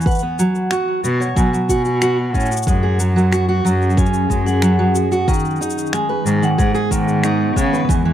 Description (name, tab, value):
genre	folktronica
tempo	92 BPM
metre	4/4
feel	straight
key	unclear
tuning	A4 = 441 Hz
part	vibraphone with medium hard mallets	second line	0.0-8.0 s	F#5 to C#6	-24 LUFS	equal	tape echo
part	fingerpicked steel-string acoustic guitar	arpeggios	0.0-8.1 s	D#3 to C#5	-20 LUFS	right 1 dB	tape echo
part	cabasa and finger snaps	drums	0.0-8.0 s	none	-27 LUFS	left 2 dB	none
part	electronic kick drum	drums	0.1-8.0 s	none	-19 LUFS	equal	none
part	clear cello	bass	1.0-8.1 s	E2 to C#3	-19 LUFS	equal	none
part	warbly tape-like pad	sustained chords	3.4-8.1 s	D#3 to G#4	-22 LUFS	right 1 dB	chorus, built-in reverb
room	small room ambience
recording	dry, close 1970s-style studio recording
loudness	-15 LUFS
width	side -11 dB against mid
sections	0.0-8.1 A section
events	none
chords	0.1 Bsus2; 2.7 F#sus2; 5.3 G#m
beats	| 0.06 0.71 1.37 2.02 | 2.67 3.32 3.98 4.63 | 5.28 5.93 6.58 7.24 | 7.89